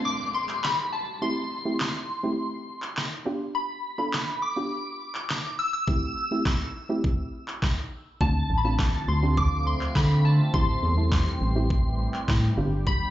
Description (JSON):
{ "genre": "dance-pop", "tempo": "103 BPM", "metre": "4/4", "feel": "straight", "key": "unclear", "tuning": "A4 = 439 Hz", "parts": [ { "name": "shimmering bell with halo", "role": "melody", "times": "0.0-13.1 s", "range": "A5 to E6", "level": "-30 LUFS", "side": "left 2 dB", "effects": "ensemble chorus, phaser, tape echo, slapback echo" }, { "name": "soft round pluck", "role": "accompaniment", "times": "0.0-13.1 s", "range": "A3 to A4", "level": "-31 LUFS", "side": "right 1 dB", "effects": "chorus, slapback echo" }, { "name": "downlifter", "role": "sound effects", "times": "0.0-3.5 s", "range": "none", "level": "-43 LUFS", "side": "equal", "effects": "slapback echo" }, { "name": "pop drum kit", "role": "drums", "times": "0.5-13.0 s", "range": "handclaps, kick drum, snare drum", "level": "-27 LUFS", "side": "equal", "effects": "overdrive" }, { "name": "sweeping resonant pad", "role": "sustained chords", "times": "8.2-13.1 s", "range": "D3 to G4", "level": "-34 LUFS", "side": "equal", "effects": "chorus, sidechain pumping" }, { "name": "organ-like FM bass", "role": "bass", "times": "8.2-13.0 s", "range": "G1 to D3", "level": "-23 LUFS", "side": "equal", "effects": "sidechain pumping" } ], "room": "light reverb, digital ambience", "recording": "live gig heard through the venue's PA, club reverb, nothing above 7.6 kHz", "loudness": "-24 LUFS", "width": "side -13 dB against mid", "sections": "0.0-13.1 A section", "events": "none", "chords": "0.0 Dm7; 1.2 Am7; 3.3 G7; 5.9 C6; 8.2 Dm7; 10.5 Am7; 12.6 G7" }